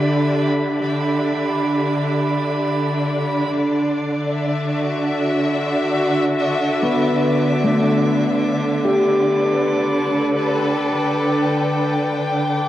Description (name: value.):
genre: ambient.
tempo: 74 BPM.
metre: 3/4.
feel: straight.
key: D major.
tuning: A4 = 440 Hz.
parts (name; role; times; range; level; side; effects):
clear studio string section; sustained chords; 0.0-12.7 s; D3 to G5; -18 LUFS; equal; none.
drifting glass-harmonics texture; texture; 0.0-12.7 s; B5 to D6; -29 LUFS; right 3 dB; chorus, built-in reverb.
concert harp; arpeggios; 6.8-11.2 s; A3 to G4; -20 LUFS; left 1 dB; diffuse ambient delay.
room: wet concert hall reverb, RT60 2.0 s.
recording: worn, warbling old tape, cassette tape, warbly pitch drift.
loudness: -17 LUFS.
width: side -13 dB against mid.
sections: 0.0-3.5 A section; 3.5-12.7 B section.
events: fade-in on synth texture 3.5-12.7.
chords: 0.0 G6/D; 3.5 D; 8.4 Gadd9/D.